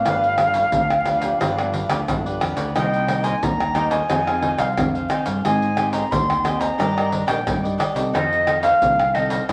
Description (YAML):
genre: samba and choro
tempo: 89 BPM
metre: 4/4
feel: straight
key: unclear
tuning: A4 = 438 Hz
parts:
  - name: concert flute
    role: melody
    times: 0.0-9.5 s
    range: Eb5 to C6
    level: -23 LUFS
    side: equal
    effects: none
  - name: cavaquinho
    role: accompaniment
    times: 0.0-9.5 s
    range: D4 to Ab5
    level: -29 LUFS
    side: equal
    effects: none
  - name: nylon-string guitar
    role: accompaniment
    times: 0.0-9.5 s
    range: G2 to Bb4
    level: -33 LUFS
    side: equal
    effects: none
  - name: growling fingered electric bass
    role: bass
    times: 0.0-9.5 s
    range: G1 to Ab2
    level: -30 LUFS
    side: equal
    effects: overdrive
  - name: egg shaker, surdo, pandeiro and tamborim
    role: percussion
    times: 0.1-9.5 s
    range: none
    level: -26 LUFS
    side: equal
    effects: none
room: wet studio reverb, RT60 0.7 s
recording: vinyl crackle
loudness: -20 LUFS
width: mono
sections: 0.0-9.5 A section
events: none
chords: 0.1 G7; 2.8 Cm7; 4.1 Fm7; 5.5 Abmaj7; 6.8 Ebmaj7; 8.1 F7